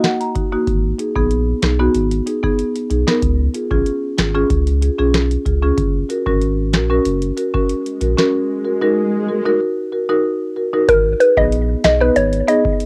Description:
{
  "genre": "dancehall",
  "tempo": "94 BPM",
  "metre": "4/4",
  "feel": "straight",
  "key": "G# dorian",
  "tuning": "A4 = 441 Hz",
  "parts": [
    { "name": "marimba with medium mallets", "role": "accompaniment", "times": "0.0-12.6 s", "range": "A#3 to A#5", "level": "-20 LUFS", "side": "equal", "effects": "sidechain pumping, cassette tape" },
    { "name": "booming analog drum machine", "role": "drums", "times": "0.0-12.9 s", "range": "hi-hat, kick drum, rim click, snare drum", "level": "-22 LUFS", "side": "equal", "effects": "cassette tape" },
    { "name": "saturated sub bass", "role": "bass", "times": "0.7-12.4 s", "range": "F#1 to C#2", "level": "-21 LUFS", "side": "equal", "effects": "none" },
    { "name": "swell", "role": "sound effects", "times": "8.0-9.6 s", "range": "none", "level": "-26 LUFS", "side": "equal", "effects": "none" },
    { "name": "mallet-like synth pluck", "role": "melody", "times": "10.9-12.6 s", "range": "A#4 to D#5", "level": "-16 LUFS", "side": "equal", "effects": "chorus, plate reverb" }
  ],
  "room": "light reverb",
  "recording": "home recording on cassette",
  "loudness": "-17 LUFS",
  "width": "mono",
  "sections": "0.0-10.9 A section; 10.9-12.9 B section",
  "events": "marimba fill 0.0-0.7; swell 8.0-10.9",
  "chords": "0.0 D#m; 0.7 G#m; 3.2 C#; 5.8 F#; 8.3 D#m; 10.9 G#m",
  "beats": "0.04 | 0.67 1.31 1.95 2.59 | 3.23 3.86 4.50 5.14 | 5.78 6.42 7.06 7.69 | 8.33 8.97 9.61 10.25 | 10.89 11.52 12.16 12.80"
}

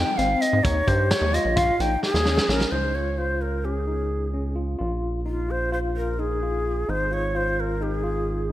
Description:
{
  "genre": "progressive instrumental, band music in an uneven meter",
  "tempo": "259 BPM (eighths)",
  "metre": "9/8",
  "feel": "straight",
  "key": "unclear",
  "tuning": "A4 = 439 Hz",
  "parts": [
    { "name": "breathy shakuhachi", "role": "melody", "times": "0.0-8.5 s", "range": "F4 to G5", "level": "-25 LUFS", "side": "equal", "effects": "none" },
    { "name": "overdriven tine electric piano", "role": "arpeggios", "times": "0.0-8.4 s", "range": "C4 to G4", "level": "-29 LUFS", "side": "left 2 dB", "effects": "fast tremolo" },
    { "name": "rubbery square bass", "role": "bass", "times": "0.0-8.5 s", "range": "Ab1 to Ab2", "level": "-26 LUFS", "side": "equal", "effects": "none" },
    { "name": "loose indie drum kit", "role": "drums", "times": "0.2-2.7 s", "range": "hi-hat, kick drum, snare drum", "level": "-26 LUFS", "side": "equal", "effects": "gated reverb" }
  ],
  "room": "moderate lush hall reverb, RT60 2.0 s, studio reverb",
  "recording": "bright 1980s-style digital production",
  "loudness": "-21 LUFS",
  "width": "side -14 dB against mid",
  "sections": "0.0-2.7 A section; 2.7-8.5 B section",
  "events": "shakuhachi solo 0.0-2.7; drum fill 2.0-2.7",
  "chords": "0.0 Abmaj7; 0.6 Eb7sus4; 2.7 Db; 4.8 Bb5; 6.9 Ab5",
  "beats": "0.18 0.41 | 0.64 0.87 1.10 1.33 1.57 1.80 2.03 2.26 2.49 | 2.72 2.95 3.18 3.41 3.64 3.88 4.11 4.34 4.57 | 4.80 5.03 5.26 5.50 5.73 5.96 6.19 6.42 6.65 | 6.89 7.12 7.35 7.58 7.81 8.04 8.28 8.51"
}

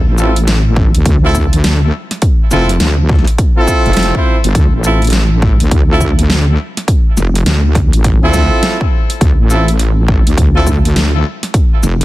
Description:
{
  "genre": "glitch hop",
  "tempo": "103 BPM",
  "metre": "4/4",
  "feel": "swing 62% on 16ths",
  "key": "D minor",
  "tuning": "A4 = 439 Hz",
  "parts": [
    { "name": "wobble bass", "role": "bass", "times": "0.0-12.0 s", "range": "F1 to D2", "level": "-11 LUFS", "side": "equal", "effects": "chorus, tube saturation" },
    { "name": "bright horn section", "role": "stabs", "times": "0.2-10.7 s", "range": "C4 to C5", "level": "-18 LUFS", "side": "equal", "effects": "sidechain pumping, ping-pong delay" },
    { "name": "dubstep drum kit", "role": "drums", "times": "0.2-12.0 s", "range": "hi-hat, shaker, snare drum", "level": "-19 LUFS", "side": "equal", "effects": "none" },
    { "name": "electronic kick drum", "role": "drums", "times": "0.8-11.7 s", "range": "none", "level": "-12 LUFS", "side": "equal", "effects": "none" }
  ],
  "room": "digital ambience",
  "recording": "dense, heavily limited modern master",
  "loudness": "-9 LUFS",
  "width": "side -17 dB against mid",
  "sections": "0.0-12.0 A section",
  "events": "none",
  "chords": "0.0 Dm7",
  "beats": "0.47 1.05 1.64 | 2.22 2.80 3.38 3.97 | 4.55 5.13 5.71 6.30 | 6.88 7.46 8.04 8.63 | 9.21 9.79 10.38 10.96 | 11.54"
}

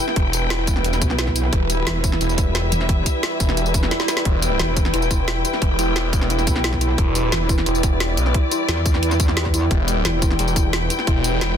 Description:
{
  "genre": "dark technical drum and bass",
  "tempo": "176 BPM",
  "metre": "4/4",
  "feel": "straight",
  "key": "E minor",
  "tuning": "A4 = 438 Hz",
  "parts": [
    { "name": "deep dark ambient pad", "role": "sustained chords", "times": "0.0-11.6 s", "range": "E4 to D5", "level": "-26 LUFS", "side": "right 3 dB", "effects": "chorus, built-in reverb, vintage 12-bit sampler grit, sidechain pumping" },
    { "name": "muted studio string section", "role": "texture", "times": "0.0-11.6 s", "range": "E4 to G5", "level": "-26 LUFS", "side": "left 3 dB", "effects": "sidechain pumping" },
    { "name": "drum and bass drum kit", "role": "drums", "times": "0.1-11.5 s", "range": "hi-hat, snare drum, tambourine", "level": "-24 LUFS", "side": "equal", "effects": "none" },
    { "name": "phased detuned saw bass", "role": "bass", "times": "0.2-11.6 s", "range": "E1 to B1", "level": "-22 LUFS", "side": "equal", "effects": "phaser, tube saturation, sidechain pumping" },
    { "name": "electronic kick drum", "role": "drums", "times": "0.2-11.1 s", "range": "none", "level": "-20 LUFS", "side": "equal", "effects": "overdrive" },
    { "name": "metallic wobble bass", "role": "bass", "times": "1.0-10.4 s", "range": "E1 to E2", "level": "-22 LUFS", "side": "equal", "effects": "chorus" },
    { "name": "dark detuned synth bell", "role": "arpeggios", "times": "4.3-11.5 s", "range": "E4 to G4", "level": "-29 LUFS", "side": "left 3 dB", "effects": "chorus, sidechain pumping, tape echo" }
  ],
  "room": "little or no reverb",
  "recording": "dense, heavily limited modern master",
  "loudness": "-17 LUFS",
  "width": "side -8 dB against mid",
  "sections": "0.0-11.6 A section",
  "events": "drum fill 3.9-4.3",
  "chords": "0.0 Em",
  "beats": "| 0.16 0.50 0.84 1.19 | 1.53 1.87 2.21 2.55 | 2.89 3.23 3.57 3.91 | 4.25 4.59 4.94 5.28 | 5.62 5.96 6.30 6.64 | 6.98 7.32 7.66 8.00 | 8.35 8.69 9.03 9.37 | 9.71 10.05 10.39 10.73 | 11.07 11.41"
}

